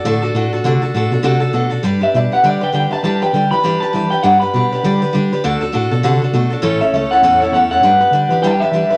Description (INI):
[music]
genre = rockabilly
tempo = 200 BPM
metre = 4/4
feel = swing 59% on 8ths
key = D major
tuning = A4 = 440 Hz
[part]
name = electric guitar through a small old amp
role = melody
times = 0.0-9.0 s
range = C#5 to B5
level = -17 LUFS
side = equal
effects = spring reverb
[part]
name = picked steel-string acoustic guitar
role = accompaniment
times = 0.0-9.0 s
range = A2 to B4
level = -20 LUFS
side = equal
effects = none
[part]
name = tine electric piano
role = bass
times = 0.0-8.9 s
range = A1 to E3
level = -22 LUFS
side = equal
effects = none
[sound]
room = moderate club reverb, RT60 0.6 s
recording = none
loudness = -15 LUFS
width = mono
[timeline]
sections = 0.0-9.0 A section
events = none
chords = 0.0 D; 1.8 G; 5.4 D; 6.6 A; 7.8 G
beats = 0.04 0.34 | 0.64 0.94 1.24 1.54 | 1.84 2.14 2.44 2.74 | 3.04 3.34 3.64 3.94 | 4.24 4.54 4.84 5.14 | 5.44 5.74 6.03 6.33 | 6.63 6.93 7.23 7.53 | 7.83 8.13 8.43 8.73